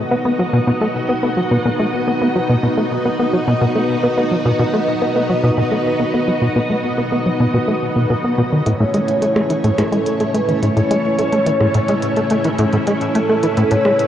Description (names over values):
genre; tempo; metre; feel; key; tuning
ambient, sequencer-driven space music; 107 BPM; 4/4; straight; unclear; A4 = 439 Hz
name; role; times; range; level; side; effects
string machine, full ensemble; sustained chords; 0.0-14.1 s; A3 to D#5; -19 LUFS; equal; ensemble chorus, shimmer reverb
plucky analog bass; riff; 0.1-13.9 s; A2 to B3; -17 LUFS; equal; shimmer reverb, ping-pong delay
mellow horn-like synth lead; melody; 8.7-14.1 s; A4 to C#5; -20 LUFS; equal; wide subtle chorus, shimmer reverb, ping-pong delay
electronic hi-hat and percussion blips; percussion; 8.7-14.1 s; none; -28 LUFS; right 1 dB; ping-pong delay
room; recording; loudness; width
wet huge ambient reverb, RT60 8.5 s; worn, warbling old tape, cassette tape, warbly pitch drift; -14 LUFS; side -10 dB against mid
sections
0.0-14.1 A section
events
none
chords
0.0 B; 8.7 A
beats
0.25 0.81 1.37 | 1.93 2.49 3.06 3.62 | 4.18 4.74 5.30 5.86 | 6.42 6.98 7.54 8.10 | 8.66 9.22 9.78 10.34 | 10.90 11.47 12.03 12.59 | 13.15 13.71